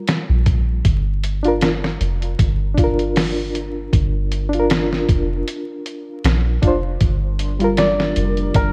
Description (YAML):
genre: trip hop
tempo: 78 BPM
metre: 4/4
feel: swing 55% on 16ths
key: unclear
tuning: A4 = 440 Hz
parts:
  - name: reed electric piano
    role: accompaniment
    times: 0.0-7.9 s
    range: G3 to C5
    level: -24 LUFS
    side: equal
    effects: fast tremolo
  - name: trip hop sampler-style drum kit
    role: drums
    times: 0.1-8.7 s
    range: hi-hat, kick drum, snare drum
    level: -21 LUFS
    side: equal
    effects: studio reverb
  - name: soft 808-style bass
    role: bass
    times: 0.3-8.7 s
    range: F1 to Bb1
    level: -23 LUFS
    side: equal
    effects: none
  - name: dark analog pad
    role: sustained chords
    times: 7.3-8.7 s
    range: G3 to Bb4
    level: -27 LUFS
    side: equal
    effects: chorus, vintage 12-bit sampler grit
  - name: felt-muted upright piano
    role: melody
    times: 7.8-8.7 s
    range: Bb4 to D5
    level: -22 LUFS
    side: equal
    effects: none
room: light reverb, digital ambience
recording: worn, warbling old tape, cassette tape, vinyl crackle, warbly pitch drift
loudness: -19 LUFS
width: mono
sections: 0.0-8.7 A section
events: none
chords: 0.0 Gm7; 0.9 Bb; 7.0 Gm7